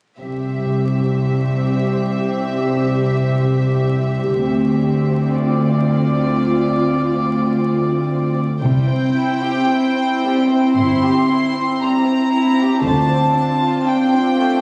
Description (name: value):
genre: cinematic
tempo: 57 BPM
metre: 4/4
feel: rubato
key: unclear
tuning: A4 = 440 Hz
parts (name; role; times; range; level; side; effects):
- warm symphonic violin section; melody; 0.2-14.6 s; D5 to C6; -26 LUFS; equal; none
- dark symphonic viola section; accompaniment; 0.2-14.6 s; C4 to G4; -24 LUFS; equal; none
- warm symphonic cello section; bass; 0.2-13.7 s; C2 to D3; -21 LUFS; equal; none
- warm symphonic violin section; second line; 8.6-14.6 s; G3 to C5; -26 LUFS; equal; none
- warm French horn section; sustained chords; 8.6-14.6 s; C4 to F4; -20 LUFS; equal; none
- warm studio double bass section; bass; 8.6-13.7 s; G1 to D2; -24 LUFS; equal; none
room: moderate scoring stage reverb, RT60 1.4 s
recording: recorded on a phone in the room, club reverb, vinyl crackle, compression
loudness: -17 LUFS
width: mono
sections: 0.2-8.6 A section; 8.6-14.6 B section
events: none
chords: 0.2 C; 4.4 Dm7; 8.6 C; 12.8 Dm7